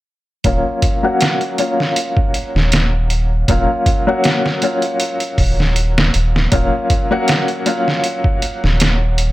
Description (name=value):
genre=trip hop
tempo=79 BPM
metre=4/4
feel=swing 54% on 16ths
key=Eb minor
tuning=A4 = 440 Hz
part: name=bright upright piano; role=accompaniment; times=0.4-9.3 s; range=Gb3 to Gb4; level=-18 LUFS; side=left 1 dB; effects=tremolo, low-pass filter, tape echo
part: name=soft dub sub bass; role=bass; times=0.4-9.3 s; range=Eb1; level=-16 LUFS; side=equal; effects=none
part: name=trip hop sampler-style drum kit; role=drums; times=0.4-9.3 s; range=hi-hat, kick drum, snare drum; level=-17 LUFS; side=equal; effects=none
room=light reverb, digital ambience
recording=none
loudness=-14 LUFS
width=side -17 dB against mid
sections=0.4-9.3 A section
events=filter sweep on upright piano 0.4-9.3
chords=0.4 Ebm9